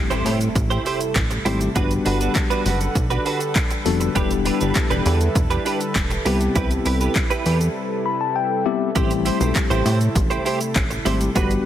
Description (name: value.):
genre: dance-pop.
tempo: 100 BPM.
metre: 4/4.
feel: straight.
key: unclear.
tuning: A4 = 440 Hz.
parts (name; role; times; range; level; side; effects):
mellow tine electric piano; accompaniment; 0.0-11.7 s; G3 to B5; -23 LUFS; moving between left 11 dB and right 2 dB; auto-pan, sidechain pumping.
warm analog pad; sustained chords; 0.0-11.7 s; C3 to F#5; -28 LUFS; right 1 dB; chorus, sidechain pumping.
impact; sound effects; 0.0-1.8 s; none; -39 LUFS; equal; none.
direct-recorded clean electric guitar; riff; 0.1-11.5 s; D4 to C5; -26 LUFS; right 5 dB; ensemble chorus.
chorused synth bass; bass; 0.1-11.6 s; E1 to A2; -22 LUFS; equal; sidechain pumping.
punchy analog drum machine; drums; 0.1-11.6 s; handclaps, hi-hat, kick drum, shaker; -23 LUFS; equal; none.
group handclap; percussion; 1.2-10.9 s; none; barely audible; none; none.
room: light reverb.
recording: heavily compressed radio sound.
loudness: -18 LUFS.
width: side -11 dB against mid.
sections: 0.0-11.7 A section.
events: impact 0.0-1.8; break 7.8-9.0; tine electric piano fill 7.8-9.0.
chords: 0.0 Am7; 1.8 Gmaj7; 4.2 Em7; 6.3 Cmaj7; 9.0 Am7.